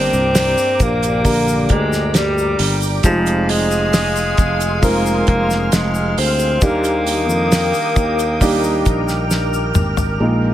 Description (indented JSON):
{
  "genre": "pop ballad",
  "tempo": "67 BPM",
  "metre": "4/4",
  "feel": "straight",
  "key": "Eb major",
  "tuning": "A4 = 440 Hz",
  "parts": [
    { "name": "breathy alto saxophone", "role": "melody", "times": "0.0-9.8 s", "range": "F3 to C4", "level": "-19 LUFS", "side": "left 1 dB", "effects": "digital delay" },
    { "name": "dark grand piano", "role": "accompaniment", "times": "0.0-10.5 s", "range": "G2 to Bb4", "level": "-21 LUFS", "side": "right 1 dB", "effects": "none" },
    { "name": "glassy FM pad", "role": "sustained chords", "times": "0.0-10.5 s", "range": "G4 to F6", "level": "-23 LUFS", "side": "equal", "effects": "ensemble chorus, built-in reverb" },
    { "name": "sustaining fretless electric bass", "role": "bass", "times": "0.0-10.5 s", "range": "F1 to F2", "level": "-21 LUFS", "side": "equal", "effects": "none" },
    { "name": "tube shaker", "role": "percussion", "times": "0.1-10.2 s", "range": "none", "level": "-30 LUFS", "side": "left 8 dB", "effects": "none" },
    { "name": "damped 70s drum kit", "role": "drums", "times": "0.3-10.2 s", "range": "hi-hat, kick drum, snare drum, toms", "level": "-19 LUFS", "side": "equal", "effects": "none" }
  ],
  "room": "light reverb, small room ambience",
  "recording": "none",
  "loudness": "-14 LUFS",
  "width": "side -12 dB against mid",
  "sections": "0.0-10.2 A section",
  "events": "drum fill 9.3-10.2",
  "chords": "0.0 Gm; 3.0 Fm7; 6.6 Ebmaj7",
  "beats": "0.35 1.25 2.14 | 3.04 3.93 4.83 5.72 | 6.62 7.51 8.41 9.31 | 10.20"
}